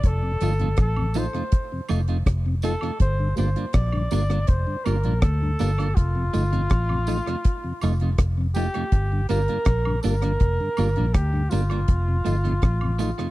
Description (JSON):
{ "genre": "roots reggae", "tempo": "81 BPM", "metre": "4/4", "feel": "straight", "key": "unclear", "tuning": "A4 = 440 Hz", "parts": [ { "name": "clear flugelhorn", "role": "melody", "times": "0.0-13.3 s", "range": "F4 to D5", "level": "-29 LUFS", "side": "equal", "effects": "dub echo" }, { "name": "vintage muted fingered electric bass", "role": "bass", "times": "0.0-13.1 s", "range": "F1 to D2", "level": "-23 LUFS", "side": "equal", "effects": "none" }, { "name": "deep reggae drum kit", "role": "drums", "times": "0.0-13.3 s", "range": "hi-hat, kick drum, rim click", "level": "-21 LUFS", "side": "equal", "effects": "none" }, { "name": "mellow tonewheel organ", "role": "accompaniment", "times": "0.2-13.3 s", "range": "F2 to F4", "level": "-30 LUFS", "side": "left 2 dB", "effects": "slow rotary speaker" }, { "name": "clean electric guitar", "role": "accompaniment", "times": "0.4-13.3 s", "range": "A3 to F4", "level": "-32 LUFS", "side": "right 8 dB", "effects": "dub echo" }, { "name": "tambourine and woodblock", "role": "percussion", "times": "0.4-13.2 s", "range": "none", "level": "-41 LUFS", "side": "right 4 dB", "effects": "none" } ], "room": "small room ambience", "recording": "dry, close 1970s-style studio recording", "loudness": "-20 LUFS", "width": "side -18 dB against mid", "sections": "0.0-13.3 A section", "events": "none", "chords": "0.0 F7; 3.0 Gm7; 6.0 F7; 8.9 Gm7; 11.9 F7" }